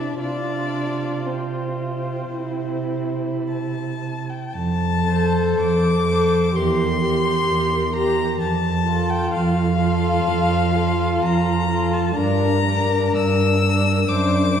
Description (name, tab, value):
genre	classical, slow romantic movement for string quartet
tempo	50-67 BPM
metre	4/4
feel	rubato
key	F major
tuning	A4 = 438 Hz
part	dark violin	melody	0.0-14.6 s	C5 to E6	-25 LUFS	left 4 dB	none
part	dark violin	second line	0.0-14.6 s	C4 to C5	-28 LUFS	left 4 dB	none
part	dark viola	accompaniment	0.0-14.6 s	D4 to A4	-24 LUFS	equal	none
part	dark cello	bass	0.0-14.6 s	E2 to C3	-22 LUFS	right 2 dB	none
room	wet concert hall reverb, RT60 2.1 s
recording	heard from further back in the room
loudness	-18 LUFS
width	side -8 dB against mid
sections	0.0-4.5 A section; 4.5-14.6 B section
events	none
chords	0.2 F5/C; 2.3 C; 4.5 F; 6.5 C7/E; 8.4 F; 12.2 Gm; 14.1 D7/F#